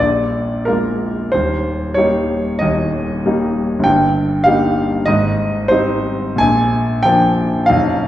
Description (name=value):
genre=classical, romantic character piece for solo piano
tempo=83-100 BPM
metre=4/4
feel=rubato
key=unclear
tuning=A4 = 440 Hz
part: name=clear grand piano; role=solo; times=0.0-8.1 s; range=B0 to Ab5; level=-14 LUFS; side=equal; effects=none
room=wet recital hall reverb, RT60 1.7 s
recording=heard from further back in the room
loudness=-14 LUFS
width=side -13 dB against mid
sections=0.0-8.1 A section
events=none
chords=0.0 Bb7; 1.3 Eb; 3.9 Eb/G; 5.1 Abmaj7; 6.4 Bb7